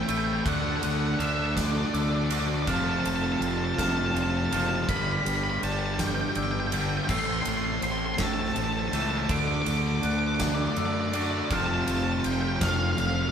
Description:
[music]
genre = post-rock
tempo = 54 BPM (dotted quarters)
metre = 6/8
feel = straight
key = unclear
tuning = A4 = 442 Hz
[part]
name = octave-fuzz lead guitar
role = melody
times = 0.0-13.3 s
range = D5 to D6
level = -31 LUFS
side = equal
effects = distortion
[part]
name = analog string pad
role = sustained chords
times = 0.0-13.3 s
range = B3 to A5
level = -41 LUFS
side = right 1 dB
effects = none
[part]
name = electric guitar through a small old amp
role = arpeggios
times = 0.0-13.3 s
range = A2 to F#4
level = -37 LUFS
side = left 2 dB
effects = none
[part]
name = glockenspiel with rubber mallets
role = arpeggios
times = 0.0-13.3 s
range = E6 to G6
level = -36 LUFS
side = equal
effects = none
[part]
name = crunchy overdriven guitar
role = riff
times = 0.0-13.3 s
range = F2 to D4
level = -32 LUFS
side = right 7 dB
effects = none
[part]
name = thick fuzz guitar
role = riff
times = 0.0-13.3 s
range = F2 to D4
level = -32 LUFS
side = left 6 dB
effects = distortion
[part]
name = fuzz fingered electric bass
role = bass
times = 0.0-13.3 s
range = F1 to F#2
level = -31 LUFS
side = equal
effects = overdrive
[part]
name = huge arena drum kit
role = drums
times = 0.1-13.2 s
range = crash cymbal, kick drum, ride cymbal, snare drum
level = -32 LUFS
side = right 1 dB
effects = none
[sound]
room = wet studio reverb, RT60 0.8 s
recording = band playing live in one room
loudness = -24 LUFS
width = side -8 dB against mid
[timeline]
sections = 0.0-13.3 A section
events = none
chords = 0.5 D; 2.7 F; 4.9 G; 7.1 Am; 9.3 D; 11.5 F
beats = | 0.46 1.57 | 2.67 3.78 | 4.89 5.99 | 7.10 8.20 | 9.31 10.41 | 11.52 12.62

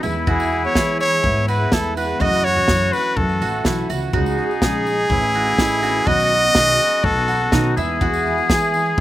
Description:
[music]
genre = indie folk with a building arrangement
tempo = 124 BPM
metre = 4/4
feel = straight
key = E major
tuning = A4 = 437 Hz
[part]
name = clear trumpet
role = melody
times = 0.0-9.0 s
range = G#4 to D#5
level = -19 LUFS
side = equal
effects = none
[part]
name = clear oboe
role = second line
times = 0.0-9.0 s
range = D#4 to G#4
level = -24 LUFS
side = left 6 dB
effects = none
[part]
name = felt-muted upright piano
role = accompaniment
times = 0.0-9.0 s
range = F#1 to F#5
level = -31 LUFS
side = right 6 dB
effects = slapback echo
[part]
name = picked twelve-string acoustic guitar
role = accompaniment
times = 0.0-9.0 s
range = F#2 to B4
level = -27 LUFS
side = left 4 dB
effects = none
[part]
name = mandolin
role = arpeggios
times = 0.0-9.0 s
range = D#4 to G#4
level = -26 LUFS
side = right 8 dB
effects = none
[part]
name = upright bass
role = bass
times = 0.0-9.0 s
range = A1 to E3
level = -24 LUFS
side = equal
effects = none
[part]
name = tambourine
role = percussion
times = 0.0-9.0 s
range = none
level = -40 LUFS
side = right 4 dB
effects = none
[part]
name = natural country drum kit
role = drums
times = 0.3-9.0 s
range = kick drum, snare drum, toms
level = -21 LUFS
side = equal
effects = none
[sound]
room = little or no reverb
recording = recorded outdoors, with no room sound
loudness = -15 LUFS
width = side -14 dB against mid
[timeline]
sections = 0.0-9.0 A section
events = none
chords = 0.0 E; 2.2 F#m7; 4.1 C#sus2; 5.1 Aadd9; 6.1 Badd9; 7.8 E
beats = | 0.27 0.76 1.24 1.72 | 2.21 2.69 3.17 3.65 | 4.14 4.62 5.11 5.59 | 6.07 6.56 7.04 7.52 | 8.01 8.49 8.98

